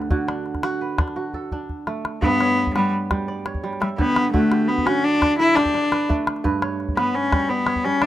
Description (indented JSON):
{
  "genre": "west african traditional, West African string and xylophone music",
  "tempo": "114 BPM (dotted quarters)",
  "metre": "12/8",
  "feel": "straight",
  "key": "G lydian",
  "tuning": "A4 = 441 Hz",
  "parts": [
    { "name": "kora", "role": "arpeggios", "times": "0.0-8.1 s", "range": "G2 to E5", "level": "-24 LUFS", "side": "right 4 dB", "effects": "none" },
    { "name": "calabash", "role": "percussion", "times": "0.0-8.1 s", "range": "none", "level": "-24 LUFS", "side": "left 1 dB", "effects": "none" },
    { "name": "clear cello", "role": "melody", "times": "2.2-8.1 s", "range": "G3 to E4", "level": "-20 LUFS", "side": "left 2 dB", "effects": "none" }
  ],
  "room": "little or no reverb",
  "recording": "rough home demo mix",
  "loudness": "-19 LUFS",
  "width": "side -13 dB against mid",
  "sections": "0.0-2.2 A section; 2.2-8.1 B section",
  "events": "drum fill 1.3-2.2; cello solo 2.2-8.1",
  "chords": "0.1 D; 2.2 G; 4.3 D; 6.4 G"
}